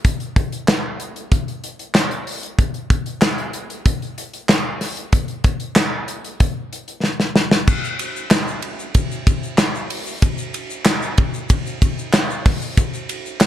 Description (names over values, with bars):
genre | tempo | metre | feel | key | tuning
pop | 94 BPM | 4/4 | straight | none | none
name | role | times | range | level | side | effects
modern studio drum kit | drums | 0.0-13.5 s | crash cymbal, handclaps, hi-hat, kick drum, ride cymbal, snare drum | -17 LUFS | equal | none
egg shaker | percussion | 7.7-13.5 s | none | -34 LUFS | left 5 dB | none
room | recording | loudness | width
little or no reverb | dark, warm production | -17 LUFS | side -12 dB against mid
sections
0.0-7.7 A section; 7.7-13.5 B section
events
drum fill 7.0-7.7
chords
none